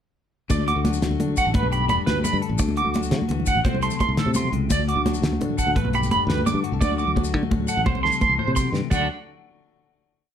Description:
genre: highlife guitar band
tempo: 114 BPM (dotted quarters)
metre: 12/8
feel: straight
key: D mixolydian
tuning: A4 = 440 Hz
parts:
  - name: clean electric guitar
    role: accompaniment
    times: 0.5-9.1 s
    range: G2 to A4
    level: -27 LUFS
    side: left 10 dB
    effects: spring reverb
  - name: electric guitar at the edge of break-up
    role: arpeggios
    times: 0.5-9.1 s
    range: A4 to D6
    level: -24 LUFS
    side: right 4 dB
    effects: tremolo, slapback echo
  - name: fingered electric bass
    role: bass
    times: 0.5-9.1 s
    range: E1 to D3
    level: -25 LUFS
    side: equal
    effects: none
  - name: damped 70s drum kit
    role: drums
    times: 0.5-9.0 s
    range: crash cymbal, hi-hat, kick drum, snare drum, toms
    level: -25 LUFS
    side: equal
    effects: none
  - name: congas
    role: percussion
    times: 0.5-9.1 s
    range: none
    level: -28 LUFS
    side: right 2 dB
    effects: none
  - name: maracas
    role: percussion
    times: 0.5-9.1 s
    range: none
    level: -36 LUFS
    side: left 5 dB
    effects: none
room: moderate studio reverb, RT60 0.6 s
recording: none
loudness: -20 LUFS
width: side -9 dB against mid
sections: 0.5-8.9 groove; 8.9-10.3 final chord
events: drum fill 6.8-8.9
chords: 0.5 D; 1.6 Gadd9; 2.6 D; 3.7 C6; 4.7 D; 5.8 Gadd9; 6.8 D; 7.9 C6; 8.9 D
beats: | 0.50 1.02 1.55 2.08 | 2.60 3.13 3.65 4.18 | 4.71 5.23 5.76 6.29 | 6.81 7.34 7.86 8.39 | 8.91

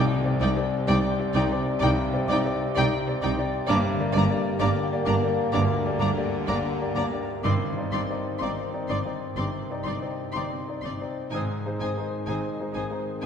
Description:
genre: cinematic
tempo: 63 BPM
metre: 4/4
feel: rubato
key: C minor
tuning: A4 = 440 Hz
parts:
  - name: warm studio violin section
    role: melody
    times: 0.0-13.3 s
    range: G5 to C6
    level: -35 LUFS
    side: left 3 dB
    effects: none
  - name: bright concert flute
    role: second line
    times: 0.0-13.3 s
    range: D6 to Eb6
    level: -36 LUFS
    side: equal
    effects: none
  - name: mellow clarinet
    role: second line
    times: 0.0-13.3 s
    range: Bb3 to Eb4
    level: -35 LUFS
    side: left 2 dB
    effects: none
  - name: bright concert grand piano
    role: accompaniment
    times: 0.0-13.3 s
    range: C2 to D5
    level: -30 LUFS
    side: left 1 dB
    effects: none
  - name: clear French horn section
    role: sustained chords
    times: 0.0-13.3 s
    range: C3 to D5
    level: -33 LUFS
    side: left 3 dB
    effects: none
  - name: concert harp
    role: arpeggios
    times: 0.0-13.3 s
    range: G2 to G5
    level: -33 LUFS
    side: left 3 dB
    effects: none
  - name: warm studio cello section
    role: bass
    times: 0.0-13.3 s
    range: C2 to Ab2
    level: -31 LUFS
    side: right 3 dB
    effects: none
  - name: timpani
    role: percussion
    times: 0.0-1.3, 7.4-8.9 s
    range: G2 to C3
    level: -33 LUFS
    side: left 1 dB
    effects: none
  - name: warm studio violin section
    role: second line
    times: 0.4-13.3 s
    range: C5 to D5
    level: -37 LUFS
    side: left 2 dB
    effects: none
  - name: warm symphonic viola section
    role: accompaniment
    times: 0.4-13.3 s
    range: D4 to Eb4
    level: -36 LUFS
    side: right 4 dB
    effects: none
  - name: rich studio double bass section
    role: bass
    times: 0.4-13.3 s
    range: G1 to C2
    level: -32 LUFS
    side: right 3 dB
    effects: none
room: wet scoring stage reverb, RT60 1.7 s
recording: heard from further back in the room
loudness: -23 LUFS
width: side -7 dB against mid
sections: 0.0-13.3 A section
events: none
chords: 0.0 Cmadd9; 3.7 Gm; 7.4 Cmadd9/G; 11.3 Ab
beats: 0.87 1.81 2.76 | 3.69 4.61 5.53 6.48 | 7.44 8.41 9.38 10.35 | 11.32 12.28 13.22

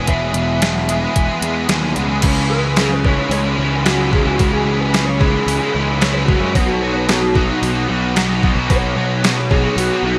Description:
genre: indie rock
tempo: 111 BPM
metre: 4/4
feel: straight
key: unclear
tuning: A4 = 441 Hz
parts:
  - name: electric guitar through a small old amp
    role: melody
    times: 0.0-10.2 s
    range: D#4 to E5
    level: -25 LUFS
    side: equal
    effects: spring reverb
  - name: overdriven semi-hollow guitar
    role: riff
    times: 0.0-10.2 s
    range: E2 to G#4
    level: -22 LUFS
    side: equal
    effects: analog chorus
  - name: fuzz picked electric bass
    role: bass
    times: 0.0-10.2 s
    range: E1 to F#2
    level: -22 LUFS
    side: equal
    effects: overdrive
  - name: detuned 8-bit digital drum machine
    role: drums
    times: 0.1-9.9 s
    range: crash cymbal, hi-hat, kick drum, snare drum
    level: -20 LUFS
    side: equal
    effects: overdrive, gated reverb
  - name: raw garage guitar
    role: riff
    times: 2.2-10.2 s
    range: B2 to B3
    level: -27 LUFS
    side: equal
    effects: overdrive, ensemble chorus
room: moderate lush hall reverb, RT60 2.1 s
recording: bright 1980s-style digital production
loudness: -16 LUFS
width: mono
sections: 0.0-2.2 A section; 2.2-10.2 B section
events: clean electric guitar solo 2.2-10.2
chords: 0.0 E; 2.2 C#m; 6.5 B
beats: | 0.08 0.62 1.16 1.70 | 2.24 2.77 3.31 3.85 | 4.39 4.93 5.47 6.01 | 6.55 7.09 7.63 8.16 | 8.70 9.24 9.78

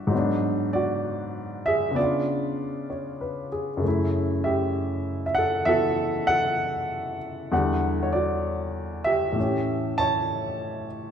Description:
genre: solo jazz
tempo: 65 BPM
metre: 4/4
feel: swing 67% on 8ths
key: unclear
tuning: A4 = 440 Hz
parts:
  - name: warm upright piano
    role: solo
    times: 0.0-11.1 s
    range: E2 to A5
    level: -23 LUFS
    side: equal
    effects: none
room: wet concert hall reverb, RT60 1.8 s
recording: recorded in a church or concert hall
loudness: -23 LUFS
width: side -8 dB against mid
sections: 0.0-11.1 A section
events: none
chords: 0.1 G#m7b5; 2.0 C#7b9; 3.8 F#m7; 7.5 Em9; 9.4 A7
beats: | 0.12 1.04 1.97 2.89 | 3.82 4.74 5.67 6.59 | 7.52 8.44 9.37 10.29

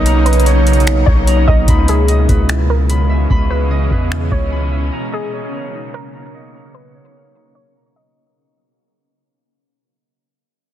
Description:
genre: hip hop, atmospheric cloud-rap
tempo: 148 BPM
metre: 4/4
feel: half-time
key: unclear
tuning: A4 = 443 Hz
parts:
  - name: shimmering ambient pad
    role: sustained chords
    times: 0.0-8.1 s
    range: B2 to D#4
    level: -21 LUFS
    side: right 2 dB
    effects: chorus, built-in reverb, low-pass filter
  - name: Celtic harp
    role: arpeggios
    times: 0.0-10.1 s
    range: D#4 to B5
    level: -25 LUFS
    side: right 1 dB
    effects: low-pass filter, tape echo
  - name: long sustained 808-style bass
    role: bass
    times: 0.0-4.9 s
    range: B1 to E2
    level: -14 LUFS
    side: equal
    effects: none
  - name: wind-like tuned noise texture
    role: texture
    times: 0.0-8.1 s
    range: B2 to D#5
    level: -28 LUFS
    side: left 1 dB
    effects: built-in reverb
  - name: booming analog drum machine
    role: drums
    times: 0.1-4.5 s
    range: finger snaps, hi-hat, kick drum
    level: -16 LUFS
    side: equal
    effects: none
  - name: warbly dusty pluck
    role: melody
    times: 0.3-8.2 s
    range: G#4 to D#5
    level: -23 LUFS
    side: equal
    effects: chorus, low-pass filter, tape echo
room: little or no reverb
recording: heavily compressed radio sound, multiband compression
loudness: -12 LUFS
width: side -12 dB against mid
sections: 0.0-1.7 A section; 1.7-8.2 B section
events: fade-out 1.7-8.2; filter sweep 1.7-8.2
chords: 0.0 Bmaj9; 1.7 C#m9; 4.9 Bmaj9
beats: | 0.06 0.46 0.87 1.27 | 1.68 2.08 2.49 2.90 | 3.30 3.71 4.11 4.52 | 4.92 5.33 5.73 6.14 | 6.54 6.95 7.36 7.76

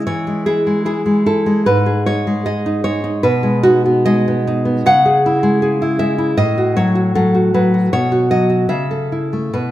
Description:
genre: romantic piece for solo classical guitar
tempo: 69-80 BPM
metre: 2/4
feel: rubato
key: unclear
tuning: A4 = 440 Hz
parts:
  - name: nylon-string guitar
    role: solo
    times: 0.0-9.7 s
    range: G#2 to F#5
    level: -13 LUFS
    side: equal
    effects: none
room: wet recital hall reverb, RT60 1.6 s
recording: none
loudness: -13 LUFS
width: side -14 dB against mid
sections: 0.0-9.7 A section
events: none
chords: 0.1 Eadd11; 1.7 G#5; 3.3 G#m/B; 4.9 C#m; 6.4 F#m/A; 7.9 B; 8.7 A/C#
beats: | 0.07 0.87 | 1.68 2.48 | 3.26 4.08 | 4.87 5.62 | 6.38 7.15 | 7.92 8.71 | 9.55

